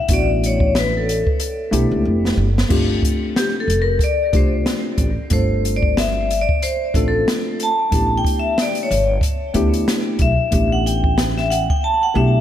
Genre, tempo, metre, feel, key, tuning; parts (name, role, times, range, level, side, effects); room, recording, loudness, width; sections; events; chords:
hip hop, jazz-hop; 92 BPM; 4/4; swing 58% on 16ths; A4 = 443 Hz
vibraphone with medium hard mallets; melody; 0.0-12.4 s; G4 to A5; -20 LUFS; left 2 dB; diffuse ambient delay
mellow tine electric piano; accompaniment; 0.1-12.4 s; A3 to A4; -22 LUFS; left 1 dB; wide subtle chorus
upright bass; bass; 0.1-12.4 s; F1 to D2; -20 LUFS; equal
open jazz drum kit; drums; 0.1-11.8 s; crash cymbal, hi-hat, kick drum, snare drum; -21 LUFS; equal
light reverb, studio ambience; -16 LUFS; side -11 dB against mid
0.0-2.7 A section; 2.7-12.4 A section
vibraphone solo 0.0-2.7, 2.7-12.4; drum fill 2.0-2.7, 11.8-12.4
0.0 A9sus4; 2.7 G9sus4; 7.9 A9sus4